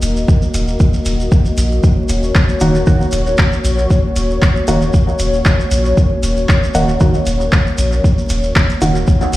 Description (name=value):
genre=dub techno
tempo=116 BPM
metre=4/4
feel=swing 54% on 16ths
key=Eb minor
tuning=A4 = 441 Hz
part: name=dark analog pad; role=sustained chords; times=0.0-9.4 s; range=Bb3 to Eb5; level=-19 LUFS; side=left 2 dB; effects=chorus, sidechain pumping
part: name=pure sine sub bass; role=bass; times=0.0-9.4 s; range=Eb1 to Bb1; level=-17 LUFS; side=equal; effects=tube saturation, sidechain pumping
part: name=deep house drum kit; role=drums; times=0.0-9.4 s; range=handclaps, hi-hat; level=-21 LUFS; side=equal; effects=dub echo
part: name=shekere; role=percussion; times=0.0-9.4 s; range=none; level=-28 LUFS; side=right 1 dB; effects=none
part: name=electronic kick drum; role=drums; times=0.3-9.2 s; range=none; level=-12 LUFS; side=equal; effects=none
part: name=filtered dub chord stab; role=stabs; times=2.6-9.0 s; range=Eb3 to Gb4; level=-18 LUFS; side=right 1 dB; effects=chorus, phaser, sidechain pumping, dub echo
room=light reverb, digital ambience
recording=played on a big sound system in a bare room, large studio reverb, vinyl crackle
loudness=-12 LUFS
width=side -16 dB against mid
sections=0.0-9.4 A section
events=filter sweep on synth stab 0.0-9.4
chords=0.0 Ebm